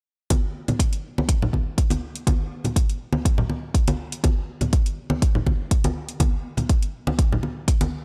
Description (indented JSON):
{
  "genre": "nu-disco, nu disco",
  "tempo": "122 BPM",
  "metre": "4/4",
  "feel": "straight",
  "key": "none",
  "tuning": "none",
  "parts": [
    { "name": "electronic hi-hat", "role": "drums", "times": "0.3-7.9 s", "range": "none", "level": "-33 LUFS", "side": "equal", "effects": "none" },
    { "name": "electronic kick drum", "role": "drums", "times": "0.3-7.8 s", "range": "none", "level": "-23 LUFS", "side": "equal", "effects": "none" },
    { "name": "congas", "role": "percussion", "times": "0.3-7.9 s", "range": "none", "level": "-28 LUFS", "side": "equal", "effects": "none" }
  ],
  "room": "light reverb, small room ambience",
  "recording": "dry, gritty hardware recording, transformer saturation, cassette tape",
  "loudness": "-23 LUFS",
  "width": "mono",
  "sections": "0.3-8.0 A section",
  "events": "none",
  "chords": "none"
}